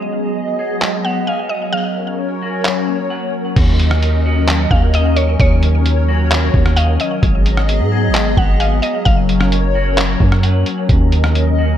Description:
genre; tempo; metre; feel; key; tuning
hip hop, atmospheric cloud-rap; 131 BPM; 4/4; half-time; Eb minor; A4 = 440 Hz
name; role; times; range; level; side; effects
hollow soft pad; sustained chords; 0.0-11.8 s; Gb3 to Eb5; -19 LUFS; left 1 dB; ensemble chorus
semi-hollow electric guitar; arpeggios; 0.0-11.8 s; Eb3 to Ab5; -24 LUFS; left 1 dB; lush chorus, low-pass filter, tape echo
lo-fi sampler-style drum kit; drums; 0.8-11.5 s; crash cymbal, handclaps, hi-hat, kick drum, rim click; -16 LUFS; equal; none
mallet-like synth pluck; melody; 1.0-9.5 s; Db5 to Gb5; -22 LUFS; equal; chorus, low-pass filter, tape echo
long sustained 808-style bass; bass; 3.6-11.8 s; Gb1 to Ab2; -14 LUFS; equal; none
room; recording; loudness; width
light reverb; none; -13 LUFS; side -10 dB against mid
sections
0.0-3.6 A section; 3.6-11.8 B section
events
none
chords
0.0 Abm7; 1.7 Gbmaj7; 3.6 Ebm7; 7.2 Abm7; 9.1 Gbmaj7; 10.9 Ebm7

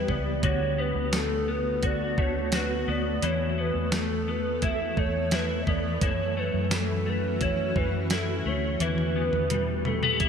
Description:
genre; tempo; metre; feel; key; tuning
dream pop; 86 BPM; 4/4; straight; unclear; A4 = 440 Hz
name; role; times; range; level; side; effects
hollow clarinet-like synth lead; melody; 0.0-10.3 s; G4 to E5; -30 LUFS; right 2 dB; chorus, ping-pong delay
granular cloud pad; sustained chords; 0.0-10.3 s; D3 to A4; -33 LUFS; equal; built-in reverb
clean electric guitar; arpeggios; 0.0-10.3 s; F#2 to F#4; -30 LUFS; left 5 dB; ensemble chorus, ping-pong delay
vintage muted fingered electric bass; bass; 0.0-10.3 s; C#2 to F#2; -31 LUFS; right 1 dB; none
clean 12-bit digital drum machine; drums; 0.1-10.3 s; hi-hat, kick drum, snare drum, tambourine, toms; -30 LUFS; right 1 dB; gated reverb
room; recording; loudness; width
moderate lush hall reverb, RT60 3.0 s; bright 1980s-style digital production; -24 LUFS; side -7 dB against mid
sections
0.0-10.3 A section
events
drum fill 8.8-10.3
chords
0.4 D6; 3.2 Esus4; 6.0 F#m7; 8.8 Em

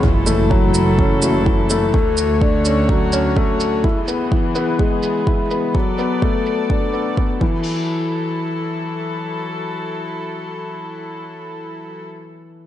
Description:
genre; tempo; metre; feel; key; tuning
piano and strings electronica; 126 BPM; 4/4; straight; F# minor; A4 = 442 Hz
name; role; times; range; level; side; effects
rich chamber string section; sustained chords; 0.0-12.0 s; D3 to D5; -26 LUFS; left 1 dB; sidechain pumping
dark upright piano; riff; 0.0-12.7 s; E3 to E4; -20 LUFS; left 2 dB; digital delay
warm studio double bass section; bass; 0.0-3.8 s; F#1 to D2; -20 LUFS; equal; sidechain pumping
electronic kick drum; drums; 0.0-7.5 s; none; -18 LUFS; right 1 dB; none
impact; sound effects; 0.0-1.9 s; none; -24 LUFS; right 1 dB; none
electronic shaker and crash cymbal; drums; 0.3-7.5 s; none; -28 LUFS; right 4 dB; low-pass filter on perc, low-pass filter on snare, low-pass filter on cymbals, low-pass filter on room
room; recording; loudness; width
light reverb; nothing above 10.4 kHz; -16 LUFS; side -12 dB against mid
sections
0.0-7.6 A section; 7.6-11.5 B section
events
impact 0.0-1.9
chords
0.0 F#m7; 1.9 Dmaj7; 3.8 E; 5.7 Bm7; 7.4 F#m7

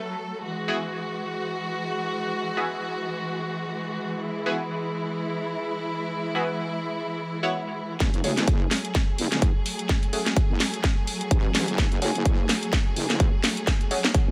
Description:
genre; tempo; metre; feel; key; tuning
bass house; 127 BPM; 4/4; swing 57% on 16ths; F# minor; A4 = 443 Hz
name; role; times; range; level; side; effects
rich studio string section; sustained chords; 0.0-14.3 s; E3 to A4; -32 LUFS; equal; sidechain pumping
band-passed chord stab; stabs; 0.7-14.0 s; A3 to C#5; -32 LUFS; equal; phaser, lush chorus, sidechain pumping, dub echo
wobble bass; bass; 8.0-14.3 s; F#1 to A1; -31 LUFS; equal; chorus, tube saturation, sidechain pumping, high-pass filter
electronic kick drum; drums; 8.0-14.3 s; none; -25 LUFS; equal; none
garage drum kit; drums; 8.0-14.3 s; hi-hat, snare drum; -28 LUFS; equal; none
room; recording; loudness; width
light reverb, digital ambience; none; -26 LUFS; mono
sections
0.0-8.0 A section; 8.0-14.3 B section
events
build-up 8.0-14.3; drum fill 8.0-14.3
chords
0.4 Eadd9; 8.0 F#madd9

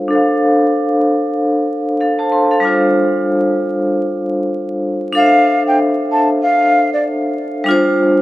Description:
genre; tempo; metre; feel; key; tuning
hip hop; 95 BPM; 4/4; swing 60% on 16ths; D minor; A4 = 444 Hz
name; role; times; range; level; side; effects
vibraphone with hard mallets; accompaniment; 0.0-8.2 s; G3 to C6; -13 LUFS; equal; high-pass filter, low-pass filter
breathy mellow concert flute; melody; 5.2-7.0 s; D5 to A5; -14 LUFS; equal; high-pass filter, low-pass filter, digital delay
room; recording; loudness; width
moderate echo chamber reverb, RT60 2.0 s; vinyl crackle; -12 LUFS; side -16 dB against mid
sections
0.0-5.2 A section; 5.2-8.2 B section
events
filter sweep on vibraphone 0.0-5.2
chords
0.1 Dm7; 2.6 G7sus4; 5.2 Dm7; 7.7 G7sus4

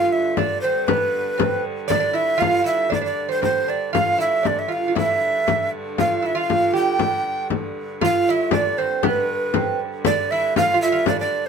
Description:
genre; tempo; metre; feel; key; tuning
medieval dance; 118 BPM; 2/4; straight; G mixolydian; A4 = 439 Hz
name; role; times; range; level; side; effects
breathy tenor recorder; melody; 0.0-11.5 s; B4 to G5; -21 LUFS; right 1 dB; none
lute; second line; 0.0-11.5 s; B3 to G4; -24 LUFS; right 6 dB; none
clear hurdy-gurdy; drone; 0.0-11.5 s; G2 to D3; -30 LUFS; right 1 dB; none
frame drum; percussion; 0.4-11.3 s; none; -23 LUFS; left 6 dB; none
room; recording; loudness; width
moderate studio reverb, RT60 0.7 s; minimal, uncompressed stereo recording; -18 LUFS; side -6 dB against mid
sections
0.0-8.0 A section; 8.0-11.5 A section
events
none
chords
none

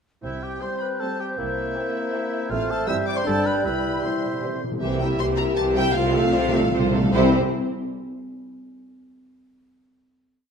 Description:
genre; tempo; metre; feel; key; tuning
quick classical-period movement for symphony orchestra; 157 BPM; 3/4; straight; C major; A4 = 439 Hz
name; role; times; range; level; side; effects
warm studio violin section; melody; 0.2-7.3 s; C5 to E6; -30 LUFS; left 1 dB; none
concert flute; second line; 0.2-4.6 s; F6 to G6; -33 LUFS; left 2 dB; none
warm clarinet; second line; 0.2-4.6 s; C5 to E5; -33 LUFS; left 1 dB; none
warm oboe; second line; 0.2-4.6 s; E4 to E5; -31 LUFS; right 1 dB; none
mellow bassoon; accompaniment; 0.2-4.6 s; G3 to C4; -29 LUFS; right 3 dB; none
warm French horn section; sustained chords; 0.2-7.3 s; G3 to G4; -27 LUFS; left 3 dB; none
warm studio cello section; bass; 0.2-7.4 s; G2 to C3; -29 LUFS; right 1 dB; none
warm studio double bass section; bass; 0.2-7.4 s; G1 to C2; -28 LUFS; right 3 dB; none
timpani; percussion; 0.2-0.8, 3.6-7.3 s; C3; -28 LUFS; left 1 dB; none
warm studio violin section; second line; 0.6-7.4 s; C4 to F5; -32 LUFS; left 2 dB; none
warm studio viola section; accompaniment; 0.6-7.4 s; D3 to G4; -28 LUFS; right 2 dB; none
room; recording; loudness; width
wet scoring stage reverb, RT60 1.5 s; none; -20 LUFS; side -6 dB against mid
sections
0.2-4.8 A section; 4.8-7.1 coda; 7.1-8.3 final chord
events
timpani fill 3.6-4.8, 6.0-7.1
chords
0.2 C5; 1.4 C7; 2.5 F/A; 2.9 C/G; 3.3 G; 3.6 C; 4.8 C7; 6.0 F/C; 7.1 C

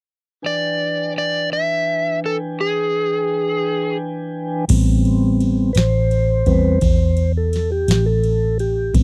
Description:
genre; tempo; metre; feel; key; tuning
slow blues; 56 BPM (dotted quarters); 12/8; straight; A minor; A4 = 443 Hz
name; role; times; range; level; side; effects
mellow tonewheel organ; sustained chords; 0.4-9.0 s; E3 to G#5; -24 LUFS; equal; slow rotary speaker
overdriven slide guitar; melody; 0.5-4.0 s; G#4 to E5; -21 LUFS; equal; none
vintage muted fingered electric bass; bass; 4.7-9.0 s; A1 to E2; -20 LUFS; equal; none
booming analog drum machine; drums; 4.7-9.0 s; crash cymbal, kick drum, ride cymbal, snare drum; -22 LUFS; equal; none
room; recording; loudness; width
little or no reverb; dry, close 1970s-style studio recording; -19 LUFS; mono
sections
0.4-4.7 A section; 4.7-9.0 B section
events
tonewheel organ solo 4.7-9.0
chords
0.4 E7#9; 4.7 Am9

